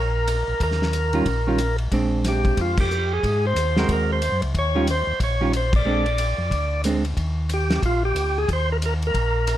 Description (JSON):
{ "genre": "soul jazz organ trio", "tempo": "183 BPM", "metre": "4/4", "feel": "swing 61% on 8ths", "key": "Eb major", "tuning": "A4 = 440 Hz", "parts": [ { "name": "percussive tonewheel organ", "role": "melody", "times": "0.0-9.6 s", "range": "F4 to D5", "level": "-24 LUFS", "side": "right 1 dB", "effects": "slow rotary speaker, overdrive" }, { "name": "mellow tonewheel organ", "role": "bass", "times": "0.0-9.6 s", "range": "Bb1 to Ab2", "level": "-24 LUFS", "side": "equal", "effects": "slow rotary speaker" }, { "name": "warm soul drum kit", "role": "drums", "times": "0.3-9.6 s", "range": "crash cymbal, hi-hat, kick drum, ride cymbal, snare drum", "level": "-28 LUFS", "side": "equal", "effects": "none" }, { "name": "archtop guitar, miked and amplified", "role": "accompaniment", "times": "1.1-7.0 s", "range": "Eb3 to Bb4", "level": "-24 LUFS", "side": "right 3 dB", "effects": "none" } ], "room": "light reverb", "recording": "none", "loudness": "-19 LUFS", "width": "side -12 dB against mid", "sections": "0.0-7.2 A section; 7.2-9.6 A section", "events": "band accent 2.7, 5.7", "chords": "0.0 Eb5; 1.9 Bb9; 3.2 Ab9; 4.5 Eb9; 5.9 Bb9; 7.2 Eb" }